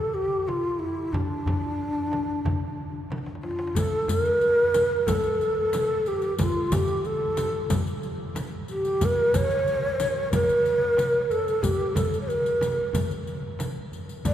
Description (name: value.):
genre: Persian modal ensemble.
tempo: 92 BPM.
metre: 4/4.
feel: straight.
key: D avaz esfahan.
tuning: A4 = 436 Hz.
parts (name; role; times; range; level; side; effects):
breathy mellow ney; melody; 0.0-14.3 s; D4 to D5; -24 LUFS; equal; none.
frame drum; percussion; 0.5-14.3 s; none; -32 LUFS; right 1 dB; none.
tombak; percussion; 0.5-14.3 s; none; -32 LUFS; left 2 dB; none.
riq; percussion; 3.8-14.3 s; none; -35 LUFS; left 3 dB; none.
room: wet cathedral reverb, RT60 5.5 s.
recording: recorded in a church or concert hall.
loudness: -23 LUFS.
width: side -10 dB against mid.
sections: 0.0-3.8 A section; 3.8-14.3 B section.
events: drum fill 3.1-3.8.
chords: none.